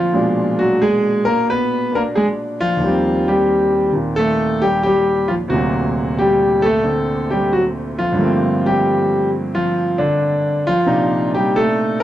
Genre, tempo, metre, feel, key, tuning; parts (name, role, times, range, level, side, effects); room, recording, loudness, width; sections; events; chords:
solo jazz; 90 BPM; 4/4; swing 67% on 8ths; Bb major; A4 = 440 Hz
clear concert grand piano; solo; 0.0-12.0 s; D2 to Cb5; -15 LUFS; equal
little or no reverb; dry, close 1970s-style studio recording, lossy compression artefacts; -15 LUFS; side -12 dB against mid
0.0-12.0 A section
0.1 Bb7b9; 2.8 Eb6; 5.5 D7b13; 8.2 Gm11; 10.9 Cm9